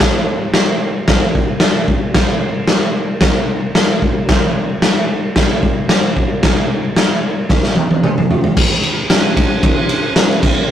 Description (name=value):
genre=rock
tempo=112 BPM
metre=4/4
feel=straight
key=none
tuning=none
part: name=raw garage drum kit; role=drums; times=0.0-10.6 s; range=crash cymbal, kick drum, ride cymbal, snare drum, toms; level=-12 LUFS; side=equal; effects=none
room=light reverb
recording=rough rehearsal-room recording, tube saturation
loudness=-12 LUFS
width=side -10 dB against mid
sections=0.0-8.6 A section; 8.6-10.7 B section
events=drum fill 7.5-8.6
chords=none